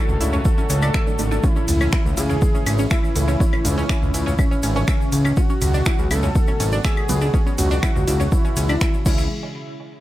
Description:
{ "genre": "melodic techno", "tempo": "122 BPM", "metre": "4/4", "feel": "straight", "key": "unclear", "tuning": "A4 = 445 Hz", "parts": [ { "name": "wide unison lead", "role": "melody", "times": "0.0-9.2 s", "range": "C#4 to A4", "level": "-26 LUFS", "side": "equal", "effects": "analog delay" }, { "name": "sweeping resonant pad", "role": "sustained chords", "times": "0.0-9.3 s", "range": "A2 to G#4", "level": "-30 LUFS", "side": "equal", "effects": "lush chorus, sidechain pumping" }, { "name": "analog pluck", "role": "arpeggios", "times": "0.0-9.3 s", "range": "C#4 to E6", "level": "-29 LUFS", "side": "right 1 dB", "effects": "chorus, vintage 12-bit sampler grit, sidechain pumping, tape echo" }, { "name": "bowed-like drone", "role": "drone", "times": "0.1-9.4 s", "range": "C#3 to C#4", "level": "-37 LUFS", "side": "left 1 dB", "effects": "none" }, { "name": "fat analog bass", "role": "bass", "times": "0.1-9.3 s", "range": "G#1 to C#2", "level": "-20 LUFS", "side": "equal", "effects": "sidechain pumping" }, { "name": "deep house drum kit", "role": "drums", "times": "0.1-9.2 s", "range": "claves, crash cymbal, finger snaps, hi-hat, ride cymbal, toms", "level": "-27 LUFS", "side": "equal", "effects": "tape echo" }, { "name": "egg shaker", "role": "percussion", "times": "0.1-9.3 s", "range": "none", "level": "-35 LUFS", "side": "left 3 dB", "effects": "none" }, { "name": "electronic kick drum", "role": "drums", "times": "0.5-9.2 s", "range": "none", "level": "-19 LUFS", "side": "equal", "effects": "none" }, { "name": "filtered dub chord stab", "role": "stabs", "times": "1.1-9.2 s", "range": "A2 to D4", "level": "-31 LUFS", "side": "right 3 dB", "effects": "phaser, sidechain pumping, tape echo" } ], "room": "little or no reverb", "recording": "echo-heavy mix", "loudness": "-17 LUFS", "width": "side -15 dB against mid", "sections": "0.0-9.3 A section", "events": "drop 0.0-9.3", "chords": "0.0 D; 1.4 A; 5.4 Bm; 9.1 C#m; 9.3 N.C.", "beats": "0.45 0.94 | 1.44 1.93 2.42 2.91 | 3.40 3.90 4.39 4.88 | 5.37 5.86 6.35 6.85 | 7.34 7.83 8.32 8.81 | 9.30" }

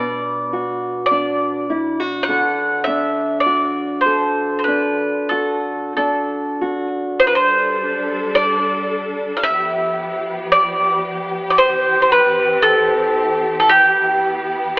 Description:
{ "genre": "celtic folk, Celtic slow air", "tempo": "45-58 BPM", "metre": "4/4", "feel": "rubato", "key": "unclear", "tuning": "A4 = 435 Hz", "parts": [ { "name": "bowl-back mandolin", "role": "melody", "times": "0.0-14.8 s", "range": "G4 to F#5", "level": "-16 LUFS", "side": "equal", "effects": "none" }, { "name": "fingerpicked steel-string acoustic guitar", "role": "accompaniment", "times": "0.0-7.8 s", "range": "B2 to B4", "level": "-21 LUFS", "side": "equal", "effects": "none" }, { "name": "clear studio string section", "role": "sustained chords", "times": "7.2-14.8 s", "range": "E3 to A4", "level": "-22 LUFS", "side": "equal", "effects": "none" } ], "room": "wet plate reverb, RT60 2.9 s", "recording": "heard from further back in the room, telephone sound", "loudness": "-15 LUFS", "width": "side -24 dB against mid", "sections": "0.0-7.2 A section; 7.2-14.8 B section", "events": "none", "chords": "0.0 Bm; 2.3 D; 7.2 Dsus4; 9.4 G7; 11.6 C/E; 13.7 Em", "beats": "1.11 | 2.28 3.45 4.67 5.97 | 7.20 8.35 9.45 10.52 | 11.58 12.63 13.69 14.77" }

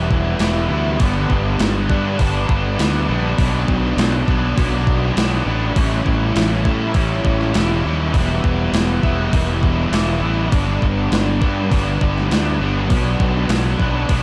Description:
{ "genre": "rock, shoegaze and dream pop", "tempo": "101 BPM", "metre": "4/4", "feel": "straight", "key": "E dorian", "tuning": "A4 = 442 Hz", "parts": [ { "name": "biting overdriven guitar", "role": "riff", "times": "0.0-14.2 s", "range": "G2 to E4", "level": "-22 LUFS", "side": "equal", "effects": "lush chorus" }, { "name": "fuzz fingered electric bass", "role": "bass", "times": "0.0-14.2 s", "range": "E1 to A2", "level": "-23 LUFS", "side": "equal", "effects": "overdrive" }, { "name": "gated 80s digital drum machine", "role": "drums", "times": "0.1-14.2 s", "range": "hi-hat, kick drum, snare drum", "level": "-22 LUFS", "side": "equal", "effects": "gated reverb, gated reverb snare, overdrive" } ], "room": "light reverb, digital ambience", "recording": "dark, warm production", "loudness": "-18 LUFS", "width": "mono", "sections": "0.0-14.2 A section", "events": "none", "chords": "0.0 Em7; 1.0 G; 3.4 Bm; 5.8 A7; 8.1 Em; 10.5 G; 12.9 Bm", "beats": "0.41 | 1.01 1.60 2.20 2.79 | 3.39 3.98 4.57 5.17 | 5.76 6.36 6.95 7.54 | 8.14 8.73 9.33 9.92 | 10.52 11.11 11.71 12.30 | 12.90 13.49 14.09" }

